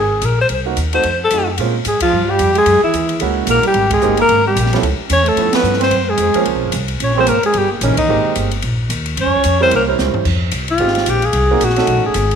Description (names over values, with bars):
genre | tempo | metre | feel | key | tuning
jazz, small-group swing and bop | 221 BPM | 4/4 | swing 59% on 8ths | F minor | A4 = 440 Hz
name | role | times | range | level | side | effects
breathy alto saxophone | melody | 0.0-12.4 s | Bb3 to Db5 | -15 LUFS | left 3 dB | slapback echo
upright bass | bass | 0.0-12.4 s | Gb1 to Bb2 | -19 LUFS | equal | none
open jazz drum kit | drums | 0.2-12.4 s | crash cymbal, hi-hat, kick drum, ride cymbal, snare drum, toms | -23 LUFS | left 2 dB | none
warm grand piano | accompaniment | 0.7-12.1 s | Fb3 to C5 | -21 LUFS | right 12 dB | none
trombone with metal mute | second line | 1.9-9.9 s | Bb2 to Db4 | -20 LUFS | right 12 dB | none
room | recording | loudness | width
moderate plate reverb, RT60 2.0 s, studio reverb | 1960s-style stereo | -13 LUFS | side -7 dB against mid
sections
0.0-1.6 A section; 1.6-10.3 B section; 10.3-12.4 C section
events
band accent 2.0, 3.9, 5.5, 8.0; drum fill 10.0; alto saxophone solo 10.3-12.4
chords
0.5 Cm7b5; 1.0 F7b9; 1.6 Bbm9; 2.7 Gb9; 3.8 Abmaj9; 4.8 Db7alt; 5.9 Gbmaj9#11; 7.0 Bbm9; 7.5 Eb7b9; 8.1 Abmaj9; 9.2 Gm7b5; 9.7 C; 10.3 Fm9; 11.3 Cm7b5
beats
0.22 | 0.49 0.77 1.04 1.31 | 1.58 1.85 2.12 2.40 | 2.67 2.94 3.21 3.48 | 3.75 4.02 4.29 4.57 | 4.84 5.11 5.38 5.65 | 5.92 6.19 6.46 6.74 | 7.01 7.28 7.55 7.82 | 8.09 8.36 8.63 8.90 | 9.17 9.44 9.71 9.99 | 10.26 10.53 10.80 11.07 | 11.34 11.61 11.88 12.15